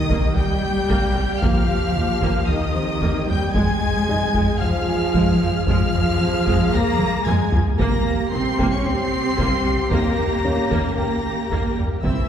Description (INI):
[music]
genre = cinematic, hybrid orchestral and electronic film score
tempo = 113 BPM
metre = 4/4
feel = straight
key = F minor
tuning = A4 = 440 Hz
[part]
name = warm symphonic violin section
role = melody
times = 0.0-12.3 s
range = Eb6 to Db7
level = -29 LUFS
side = left 1 dB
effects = none
[part]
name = warm symphonic violin section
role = second line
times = 0.0-12.3 s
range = Eb5 to Db6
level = -28 LUFS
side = left 2 dB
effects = none
[part]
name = warm symphonic viola section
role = accompaniment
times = 0.0-12.3 s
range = C3 to Ab4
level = -26 LUFS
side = equal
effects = none
[part]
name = mellow French horn section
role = sustained chords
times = 0.0-12.3 s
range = Eb3 to Db4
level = -26 LUFS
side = left 1 dB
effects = none
[part]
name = warm studio cello section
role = bass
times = 0.0-12.3 s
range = Eb3 to Db4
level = -25 LUFS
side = right 1 dB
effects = none
[part]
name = sub drop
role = sound effects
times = 0.0-1.4 s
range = none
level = -33 LUFS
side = equal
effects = none
[part]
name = warm symphonic double bass section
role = bass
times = 0.1-12.1 s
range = C2 to F2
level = -24 LUFS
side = right 1 dB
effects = none
[part]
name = taiko ensemble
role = drums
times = 0.1-12.3 s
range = none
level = -24 LUFS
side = equal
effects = none
[part]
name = felt-muted upright piano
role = texture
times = 0.1-12.3 s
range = C4 to Ab5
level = -33 LUFS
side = left 1 dB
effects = none
[sound]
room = wet concert hall reverb, RT60 2.2 s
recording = heard from further back in the room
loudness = -18 LUFS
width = side -9 dB against mid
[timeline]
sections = 0.0-12.3 A section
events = impact 0.0-1.4; drum fill 7.0-7.8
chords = 0.0 Cm7; 1.4 Eb; 3.5 Fm; 7.8 C7(no3); 9.9 Eb